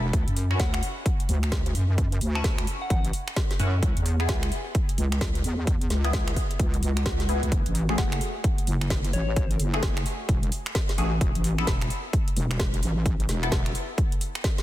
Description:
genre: bass house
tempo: 130 BPM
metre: 4/4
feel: swing 62% on 16ths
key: F# minor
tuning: A4 = 440 Hz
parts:
  - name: band-passed chord stab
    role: stabs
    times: 0.0-14.6 s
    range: A3 to A4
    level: -34 LUFS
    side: left 2 dB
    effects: phaser, wide subtle chorus, sidechain pumping, dub echo
  - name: wobble bass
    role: bass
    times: 0.0-13.7 s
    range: E1 to F#2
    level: -26 LUFS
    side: equal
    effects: chorus, tube saturation, sidechain pumping
  - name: electronic kick drum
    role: drums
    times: 0.1-14.6 s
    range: none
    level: -26 LUFS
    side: equal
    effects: overdrive
  - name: garage drum kit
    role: drums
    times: 0.1-14.6 s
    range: finger snaps, hi-hat, snare drum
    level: -33 LUFS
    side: right 1 dB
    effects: none
  - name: soft synth bell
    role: melody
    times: 0.6-3.0, 8.0-9.6 s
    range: C#5 to A5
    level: -37 LUFS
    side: left 3 dB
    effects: chorus, tremolo, vintage 12-bit sampler grit, dub echo
  - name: swell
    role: sound effects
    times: 6.7-7.5 s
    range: none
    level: -39 LUFS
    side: left 1 dB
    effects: none
room: little or no reverb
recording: dense, heavily limited modern master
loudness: -23 LUFS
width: side -14 dB against mid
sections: 0.0-14.6 A section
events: swell 6.7-7.5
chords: 0.1 Dmaj7; 3.8 C#m7; 7.5 F#madd9; 11.2 Esus4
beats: | 0.13 0.60 1.06 1.52 | 1.98 2.44 2.90 3.37 | 3.83 4.29 4.75 5.21 | 5.67 6.13 6.60 7.06 | 7.52 7.98 8.44 8.90 | 9.37 9.83 10.29 10.75 | 11.21 11.67 12.13 12.60 | 13.06 13.52 13.98 14.44

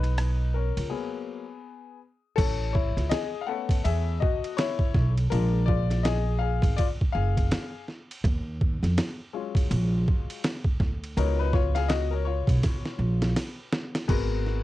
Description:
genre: hip hop, jazz-hop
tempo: 82 BPM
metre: 4/4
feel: swing 60% on 16ths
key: unclear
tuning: A4 = 441 Hz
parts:
  - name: clear grand piano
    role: accompaniment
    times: 0.0-14.6 s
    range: F#3 to F#5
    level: -31 LUFS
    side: left 9 dB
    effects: cassette tape
  - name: upright bass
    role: bass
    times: 0.0-14.6 s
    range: F#1 to E#2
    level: -25 LUFS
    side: right 1 dB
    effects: none
  - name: trip hop sampler-style drum kit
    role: drums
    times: 0.0-14.6 s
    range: crash cymbal, hi-hat, kick drum, ride cymbal, rim click, snare drum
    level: -27 LUFS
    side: right 1 dB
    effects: none
room: little or no reverb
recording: home recording on cassette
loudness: -24 LUFS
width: side -16 dB against mid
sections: 0.0-2.4 A section; 2.4-14.1 B section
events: grand piano solo 0.0-2.4, 2.4-14.1; break 0.9-2.4; drum fill 12.6-14.1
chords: 0.0 Bmaj9; 0.9 G#m9; 2.4 Amaj7; 5.3 A#7; 8.2 D#m11; 11.2 C#9sus4; 14.1 G#m9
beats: 0.19 0.92 1.65 | 2.38 3.12 3.85 4.58 | 5.31 6.04 6.78 7.51 | 8.24 8.97 9.70 10.43 | 11.17 11.90 12.63 13.36 | 14.09

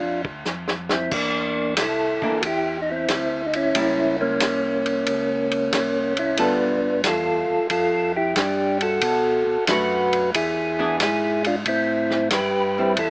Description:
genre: soul jazz organ trio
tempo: 91 BPM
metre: 4/4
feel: swing 68% on 8ths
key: unclear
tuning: A4 = 440 Hz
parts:
  - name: percussive tonewheel organ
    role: melody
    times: 0.0-13.1 s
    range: Bb3 to B4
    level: -21 LUFS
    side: equal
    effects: slow rotary speaker
  - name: mellow tonewheel organ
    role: bass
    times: 0.0-13.1 s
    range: G1 to B2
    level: -34 LUFS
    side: equal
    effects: overdrive, chorus vibrato, slow rotary speaker
  - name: warm soul drum kit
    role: drums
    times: 0.2-13.1 s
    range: crash cymbal, hi-hat, kick drum, ride cymbal, snare drum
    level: -25 LUFS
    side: equal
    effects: none
  - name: archtop guitar, miked and amplified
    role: accompaniment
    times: 2.2-13.0 s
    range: E3 to A4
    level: -26 LUFS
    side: equal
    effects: none
room: moderate club reverb, RT60 0.6 s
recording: small speaker sound, faint mains hum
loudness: -19 LUFS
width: side -28 dB against mid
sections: 0.0-13.1 A section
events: drum fill 0.5-1.1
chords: 0.0 G7(no3) (rootless); 1.1 C9; 3.8 C#dim7; 6.4 G9; 9.0 Bm7; 10.3 E7; 11.7 Am7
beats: 0.45 | 1.11 1.77 2.43 3.09 | 3.75 4.41 5.07 5.73 | 6.39 7.05 7.71 8.37 | 9.02 9.68 10.34 11.00 | 11.66 12.32 12.98

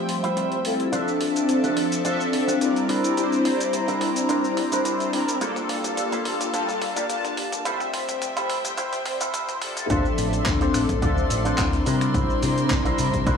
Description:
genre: nu-disco, nu disco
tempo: 107 BPM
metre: 4/4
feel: swing 54% on 16ths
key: D minor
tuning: A4 = 440 Hz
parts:
  - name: mellow synth brass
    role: accompaniment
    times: 0.0-13.4 s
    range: F3 to A5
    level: -24 LUFS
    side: left 1 dB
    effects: chorus, phaser, sidechain pumping, analog delay
  - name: warm chamber string section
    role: sustained chords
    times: 0.0-13.4 s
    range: F3 to C6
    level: -31 LUFS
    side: left 1 dB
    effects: sidechain pumping
  - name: electric guitar with an envelope filter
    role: riff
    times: 0.1-13.4 s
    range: Bb3 to D5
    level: -30 LUFS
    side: right 2 dB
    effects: wide subtle chorus, analog delay
  - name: dusty soul sampler-style drum kit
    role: drums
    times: 0.1-13.4 s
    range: finger snaps, handclaps, hi-hat, shaker, toms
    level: -31 LUFS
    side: equal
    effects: overdrive, high-pass filter on hats, high-pass filter on toms, high-pass filter on perc, high-pass filter on snare
  - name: fingered electric bass with an envelope filter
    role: bass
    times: 9.9-13.4 s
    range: A1 to C3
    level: -25 LUFS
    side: equal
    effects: tube saturation
  - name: electronic kick drum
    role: drums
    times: 9.9-13.4 s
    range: none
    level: -26 LUFS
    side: equal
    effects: none
room: moderate lush hall reverb, RT60 3.0 s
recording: dry, gritty hardware recording, high-pass filter, small room ambience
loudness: -21 LUFS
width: side -6 dB against mid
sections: 0.0-9.9 A section; 9.9-13.4 B section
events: build-up 0.0-9.9; drum fill 0.0-9.9; filter sweep 0.0-9.9; drop 9.9-13.4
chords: 0.0 Fmaj9; 0.9 Dm7; 2.9 C9; 5.4 Gm9; 7.7 Fmaj9; 9.9 Dm7; 11.9 C9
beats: 0.37 | 0.93 1.49 2.05 2.61 | 3.17 3.73 4.29 4.86 | 5.42 5.98 6.54 7.10 | 7.66 8.22 8.78 9.34 | 9.90 10.46 11.02 11.59 | 12.14 12.71 13.27

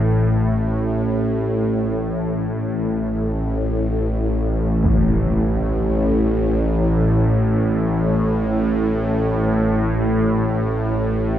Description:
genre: dark ambient drone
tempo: free time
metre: none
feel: none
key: unclear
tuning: A4 = 440 Hz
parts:
  - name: bowed-like drone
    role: drone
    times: 0.0-11.4 s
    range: A1 to A2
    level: -17 LUFS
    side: equal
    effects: built-in reverb, phaser
  - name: impact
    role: percussion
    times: 4.8-5.1 s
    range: none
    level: -25 LUFS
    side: equal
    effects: none
room: wet cathedral reverb, RT60 6.2 s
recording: in a vast, echoing space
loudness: -17 LUFS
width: side -11 dB against mid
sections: 0.0-11.4 A section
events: filter sweep on synth drone 0.0-11.4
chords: none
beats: free time

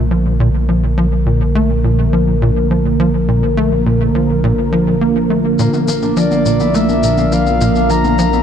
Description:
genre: ambient, sequencer-driven space music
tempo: 104 BPM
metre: 4/4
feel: straight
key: Bb lydian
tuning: A4 = 440 Hz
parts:
  - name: sweeping resonant pad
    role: sustained chords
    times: 0.0-8.4 s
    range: D3 to Bb4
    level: -16 LUFS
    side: right 1 dB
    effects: chorus
  - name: tight sequencer bass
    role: riff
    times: 0.0-8.3 s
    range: Bb2 to Bb3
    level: -17 LUFS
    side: equal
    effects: ensemble chorus, tape echo
  - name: warm sub bass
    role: bass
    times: 0.0-8.4 s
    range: Bb1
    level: -19 LUFS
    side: equal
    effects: none
  - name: concert harp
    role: arpeggios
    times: 5.6-8.4 s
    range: Bb3 to Bb4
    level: -22 LUFS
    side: left 6 dB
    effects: auto-pan, tape echo
  - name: shaker and congas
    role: percussion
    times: 5.6-8.4 s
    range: none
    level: -22 LUFS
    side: left 5 dB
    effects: overdrive, tape echo
  - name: breathy flute-like synth lead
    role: melody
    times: 6.2-8.4 s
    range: D5 to Bb5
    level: -17 LUFS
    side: equal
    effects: chorus, tape echo
room: moderate huge ambient reverb, RT60 8.8 s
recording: cassette tape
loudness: -12 LUFS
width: side -8 dB against mid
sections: 0.0-8.4 A section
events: none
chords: 0.0 Bb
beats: 0.40 | 0.98 1.55 2.13 2.71 | 3.28 3.86 4.44 5.01 | 5.59 6.17 6.75 7.32 | 7.90

